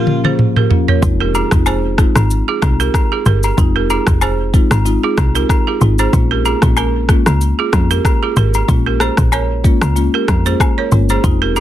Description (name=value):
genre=afrobeats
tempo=94 BPM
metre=4/4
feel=swing 55% on 16ths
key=F minor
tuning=A4 = 440 Hz
part: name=hollow soft pad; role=sustained chords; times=0.0-1.0 s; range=Bb2 to F4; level=-25 LUFS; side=equal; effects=none
part: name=afro-pop drum kit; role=drums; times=0.1-11.6 s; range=kick drum, rim click, shaker, toms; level=-14 LUFS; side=equal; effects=soft clipping on snare
part: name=marimba with soft mallets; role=accompaniment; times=0.2-11.5 s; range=F3 to F4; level=-20 LUFS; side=left 4 dB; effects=plate reverb
part: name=balafon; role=riff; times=0.2-11.6 s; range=F4 to Db5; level=-20 LUFS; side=right 11 dB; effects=digital delay
part: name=woody log drum bass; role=bass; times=1.0-11.6 s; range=F1 to F2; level=-15 LUFS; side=equal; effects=none
part: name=agogo bells and woodblock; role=percussion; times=1.3-11.6 s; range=none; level=-23 LUFS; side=left 4 dB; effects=none
room=light reverb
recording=dense, heavily limited modern master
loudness=-11 LUFS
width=side -12 dB against mid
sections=0.0-1.0 A section; 1.0-11.6 B section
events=drum fill 0.0-1.0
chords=0.0 Bbm; 1.0 Fm7; 6.1 Bbm7